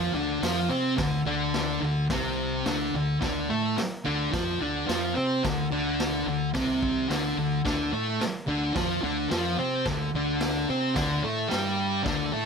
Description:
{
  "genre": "garage rock duo or trio",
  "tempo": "108 BPM",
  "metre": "4/4",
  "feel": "straight",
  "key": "unclear",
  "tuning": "A4 = 440 Hz",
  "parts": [
    { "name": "thick fuzz guitar", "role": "riff", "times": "0.0-12.5 s", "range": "C3 to C5", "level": "-26 LUFS", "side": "equal", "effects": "distortion" },
    { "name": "fuzz fingered electric bass", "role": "bass", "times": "0.0-12.5 s", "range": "C2 to C3", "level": "-34 LUFS", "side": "equal", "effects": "overdrive" },
    { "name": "raw garage drum kit", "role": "drums", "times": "0.4-12.2 s", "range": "hi-hat, kick drum, snare drum", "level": "-33 LUFS", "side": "equal", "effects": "none" }
  ],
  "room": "moderate club reverb, RT60 0.6 s",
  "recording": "none",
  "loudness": "-24 LUFS",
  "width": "side -5 dB against mid",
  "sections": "0.0-12.5 A section",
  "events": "none",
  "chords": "0.0 D5"
}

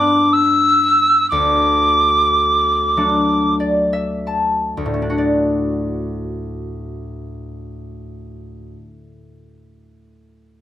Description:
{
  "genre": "celtic folk, Celtic slow air",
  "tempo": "27-44 BPM (dotted quarters)",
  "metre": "6/8",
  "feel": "rubato",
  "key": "D major",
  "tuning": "A4 = 439 Hz",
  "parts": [
    { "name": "reedy wooden whistle", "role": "melody", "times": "0.0-3.5 s", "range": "D6 to E6", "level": "-13 LUFS", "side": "equal", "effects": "none" },
    { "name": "concert harp", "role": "accompaniment", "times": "0.0-9.1 s", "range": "D2 to A5", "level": "-20 LUFS", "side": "left 1 dB", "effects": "none" }
  ],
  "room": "light reverb",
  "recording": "close, detailed microphones",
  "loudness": "-14 LUFS",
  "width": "side -12 dB against mid",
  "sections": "0.0-5.0 A section; 5.0-9.2 B section",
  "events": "slowing down 0.0-5.0; harp fill 3.0-5.0",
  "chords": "0.0 G; 1.3 D"
}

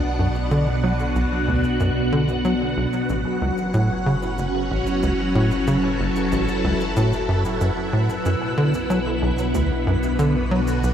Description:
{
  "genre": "ambient, sequencer-driven space music",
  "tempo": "93 BPM",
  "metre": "4/4",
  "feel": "straight",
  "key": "B minor",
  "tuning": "A4 = 440 Hz",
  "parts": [
    { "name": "phased string machine", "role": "sustained chords", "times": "0.0-10.9 s", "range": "B2 to F#5", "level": "-22 LUFS", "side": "equal", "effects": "ensemble chorus, phaser, shimmer reverb" },
    { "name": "tight sequencer bass", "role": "riff", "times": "0.0-10.9 s", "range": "F#1 to F#3", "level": "-22 LUFS", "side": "equal", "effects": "wide subtle chorus, tape echo" },
    { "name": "warm sub bass", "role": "bass", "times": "0.0-10.9 s", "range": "F#1 to B1", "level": "-28 LUFS", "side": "equal", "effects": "none" },
    { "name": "twinkling granular texture", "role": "texture", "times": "0.0-10.9 s", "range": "B4", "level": "-35 LUFS", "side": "equal", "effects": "built-in reverb, shimmer reverb" },
    { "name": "shaker and woodblock", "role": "percussion", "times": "0.3-10.9 s", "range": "none", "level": "-44 LUFS", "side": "right 4 dB", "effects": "tape echo" }
  ],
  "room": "wet lush hall reverb, RT60 3.0 s",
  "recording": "none",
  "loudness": "-19 LUFS",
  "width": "side -9 dB against mid",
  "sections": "0.0-10.9 A section",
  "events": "fade-in on synth texture 0.0-10.9; fade-in on drum 0.0-10.9",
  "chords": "0.0 Bm; 3.1 F#m7; 8.3 Bm"
}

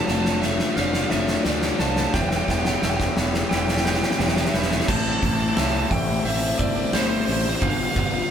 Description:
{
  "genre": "post-rock",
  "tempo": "88 BPM",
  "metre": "4/4",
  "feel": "straight",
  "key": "A minor",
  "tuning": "A4 = 444 Hz",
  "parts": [
    { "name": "bluesy overdriven lead guitar", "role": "melody", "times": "0.0-8.3 s", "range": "C5 to A5", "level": "-28 LUFS", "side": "right 4 dB", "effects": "distortion" },
    { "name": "evolving wavetable pad", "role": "sustained chords", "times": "0.4-8.3 s", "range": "F4 to B5", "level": "-38 LUFS", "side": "right 2 dB", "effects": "none" },
    { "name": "electric guitar through a small old amp", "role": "arpeggios", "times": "0.0-8.3 s", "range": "G2 to C5", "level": "-34 LUFS", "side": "right 1 dB", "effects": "none" },
    { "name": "glockenspiel with rubber mallets", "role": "arpeggios", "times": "0.0-8.3 s", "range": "E6 to F7", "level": "-37 LUFS", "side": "right 5 dB", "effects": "none" },
    { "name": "overdriven electric guitar", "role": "riff", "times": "0.0-8.3 s", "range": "G2 to F4", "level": "-26 LUFS", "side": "left 5 dB", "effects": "phaser" },
    { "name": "fuzz fingered electric bass", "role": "bass", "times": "0.1-8.2 s", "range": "E1 to D2", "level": "-28 LUFS", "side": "right 1 dB", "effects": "overdrive" },
    { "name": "oversized low-tuned drum kit", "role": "drums", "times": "0.1-8.1 s", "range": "crash cymbal, hi-hat, kick drum, snare drum", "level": "-23 LUFS", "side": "equal", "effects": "none" }
  ],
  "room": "moderate studio reverb, RT60 0.6 s",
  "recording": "band playing live in one room",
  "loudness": "-19 LUFS",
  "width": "side -8 dB against mid",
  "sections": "0.0-4.9 A section; 4.9-8.3 B section",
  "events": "build-up 0.0-4.9; drum fill 0.0-4.9",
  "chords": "0.0 Dm7/F; 2.1 Em; 4.9 Am7; 7.6 G7"
}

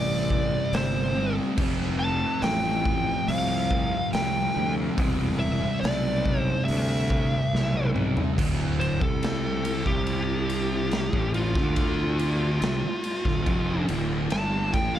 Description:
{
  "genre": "stoner and doom metal",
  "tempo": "71 BPM",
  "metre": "4/4",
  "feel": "straight",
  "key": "D minor from 8.4 s",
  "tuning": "A4 = 443 Hz",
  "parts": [
    { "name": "fuzz lead guitar", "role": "melody", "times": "0.0-15.0 s", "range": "F4 to A5", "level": "-29 LUFS", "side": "equal", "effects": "distortion, tape echo" },
    { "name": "thick fuzz guitar", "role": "riff", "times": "0.0-15.0 s", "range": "D2 to C4", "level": "-28 LUFS", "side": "equal", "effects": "distortion" },
    { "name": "fuzz fingered electric bass", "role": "bass", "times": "0.0-15.0 s", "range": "D1 to D2", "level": "-29 LUFS", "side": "equal", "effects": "overdrive, tube saturation" },
    { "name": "raw garage drum kit", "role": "drums", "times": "0.3-15.0 s", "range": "crash cymbal, hi-hat, kick drum, ride cymbal, snare drum, toms", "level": "-29 LUFS", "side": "equal", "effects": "none" }
  ],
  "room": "small room ambience",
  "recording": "dark, warm production",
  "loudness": "-23 LUFS",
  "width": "side -11 dB against mid",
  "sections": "0.0-8.4 A section; 8.4-15.0 B section",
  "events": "drum fill 7.5-8.4; lead electric guitar solo 8.4-15.0",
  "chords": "0.0 C5; 1.6 F; 5.0 C/E; 8.4 Dm"
}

